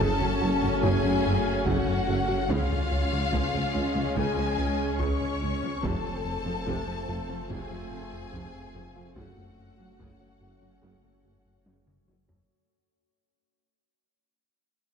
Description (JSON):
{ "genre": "cinematic, hybrid orchestral and electronic film score", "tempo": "72 BPM", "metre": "4/4", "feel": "straight", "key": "F# harmonic minor", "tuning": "A4 = 444 Hz", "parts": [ { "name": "rich symphonic violin section", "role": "melody", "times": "0.0-11.6 s", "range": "E#5 to C#6", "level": "-34 LUFS", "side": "left 5 dB", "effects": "none" }, { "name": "rich symphonic violin section", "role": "second line", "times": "0.0-11.6 s", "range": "E#4 to C#5", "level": "-36 LUFS", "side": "left 3 dB", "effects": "none" }, { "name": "rich symphonic viola section", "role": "accompaniment", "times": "0.0-12.4 s", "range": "C3 to C#4", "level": "-34 LUFS", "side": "right 1 dB", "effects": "none" }, { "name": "bright trombone section", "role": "sustained chords", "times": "0.0-12.1 s", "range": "C#3 to A3", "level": "-37 LUFS", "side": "right 4 dB", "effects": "none" }, { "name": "organ-like drone", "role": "sustained chords", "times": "0.0-12.5 s", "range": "G#3 to F5", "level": "-39 LUFS", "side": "left 3 dB", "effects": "none" }, { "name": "warm French horn section", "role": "sustained chords", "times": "0.0-12.1 s", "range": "C4 to G#4", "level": "-35 LUFS", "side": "left 4 dB", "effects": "none" }, { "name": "tight sequenced synth", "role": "arpeggios", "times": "0.0-12.4 s", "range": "C#3 to F#4", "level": "-39 LUFS", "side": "right 1 dB", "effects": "none" }, { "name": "chorused synth bass", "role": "riff", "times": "0.0-12.4 s", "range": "C#2 to F#3", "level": "-35 LUFS", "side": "left 2 dB", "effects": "none" }, { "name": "dark detuned saw bass", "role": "bass", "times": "0.0-12.5 s", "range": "F1 to C#2", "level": "-35 LUFS", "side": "equal", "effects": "none" }, { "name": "mellow tuba", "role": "bass", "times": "0.0-12.2 s", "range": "F1 to C#2", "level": "-37 LUFS", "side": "right 4 dB", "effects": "none" }, { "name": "rich symphonic double bass section", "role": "bass", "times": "0.0-12.2 s", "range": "F1 to C#2", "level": "-35 LUFS", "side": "right 4 dB", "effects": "none" }, { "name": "warm symphonic cello section", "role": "bass", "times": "0.0-12.4 s", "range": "C#2 to F#2", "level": "-37 LUFS", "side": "right 3 dB", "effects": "none" }, { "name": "taiko ensemble", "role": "drums", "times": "0.0-12.7 s", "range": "none", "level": "-36 LUFS", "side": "equal", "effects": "none" } ], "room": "moderate concert hall reverb, RT60 1.7 s", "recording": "dark, warm production", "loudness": "-25 LUFS", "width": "side -6 dB against mid", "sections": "0.0-12.5 A section", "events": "fade-out 0.0-12.5; drum fill 11.7-12.5", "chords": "0.0 F#m; 2.5 C#; 5.8 F; 9.2 F#m" }